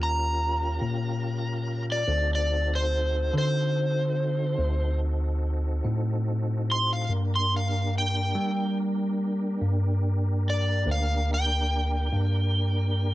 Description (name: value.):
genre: slow blues.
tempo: 48 BPM (dotted quarters).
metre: 12/8.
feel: straight.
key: G minor.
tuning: A4 = 440 Hz.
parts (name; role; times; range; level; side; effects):
overdriven slide guitar; melody; 0.0-13.1 s; C5 to C6; -28 LUFS; equal; none.
tonewheel organ; sustained chords; 0.0-13.1 s; Bb3 to Bb4; -34 LUFS; right 2 dB; slow rotary speaker, chorus vibrato.
bell-like tine electric piano; bass; 0.0-13.1 s; D2 to G3; -26 LUFS; equal; lush chorus.
room: light reverb.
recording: none.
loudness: -24 LUFS.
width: side -16 dB against mid.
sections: 0.0-13.1 A section.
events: electric slide guitar solo 0.0-13.1.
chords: 0.0 Eb7; 2.1 D7b9; 7.1 Gm.